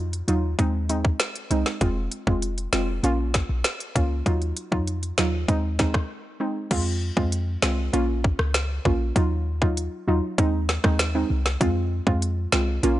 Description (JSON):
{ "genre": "dancehall", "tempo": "98 BPM", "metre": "4/4", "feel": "straight", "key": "unclear", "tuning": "A4 = 442 Hz", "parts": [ { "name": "soft round pluck", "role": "accompaniment", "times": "0.0-13.0 s", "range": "Gb3 to F4", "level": "-26 LUFS", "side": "right 1 dB", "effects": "chorus" }, { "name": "clean 808-style bass", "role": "bass", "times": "0.0-13.0 s", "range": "F1 to F2", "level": "-25 LUFS", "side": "equal", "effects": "none" }, { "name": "island pop drum kit", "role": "drums", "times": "0.1-13.0 s", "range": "crash cymbal, hi-hat, kick drum, rim click, snare drum", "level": "-24 LUFS", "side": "equal", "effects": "overdrive" } ], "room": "little or no reverb", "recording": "nothing above 10.9 kHz", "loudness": "-22 LUFS", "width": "side -15 dB against mid", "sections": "0.0-6.7 A section; 6.7-13.0 B section", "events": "break 6.1-6.7", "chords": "0.0 Ebmadd9; 0.6 Ab/Eb; 1.8 Fm; 3.0 Bbm; 4.3 Ebmadd9; 5.5 Ab/Eb; 6.7 Fm; 7.9 Bbm; 9.2 Ebmadd9; 10.4 Ab/Eb; 11.6 Fm" }